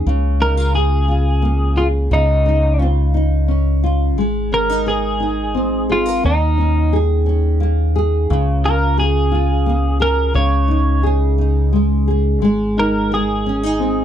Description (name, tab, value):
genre	six-eight pop ballad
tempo	58 BPM (dotted quarters)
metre	6/8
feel	straight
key	unclear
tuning	A4 = 440 Hz
part	nylon-string guitar	accompaniment	0.0-14.0 s	Db3 to Bb4	-19 LUFS	equal	double-tracked left and right
part	deep dub fingered electric bass	bass	0.0-14.0 s	Ab1 to Eb2	-17 LUFS	equal	none
part	twelve-string electric guitar	melody	0.4-14.0 s	Eb4 to Db5	-20 LUFS	right 1 dB	vibrato effect
room	little or no reverb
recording	dry, close 1970s-style studio recording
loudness	-14 LUFS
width	side -10 dB against mid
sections	0.0-14.0 A section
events	none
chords	0.1 Bbm7/Db; 2.1 Dbadd9; 4.2 Abadd9; 6.2 Eb7sus4; 8.3 Bbm7/Db; 10.3 Dbsus2; 12.4 Abadd9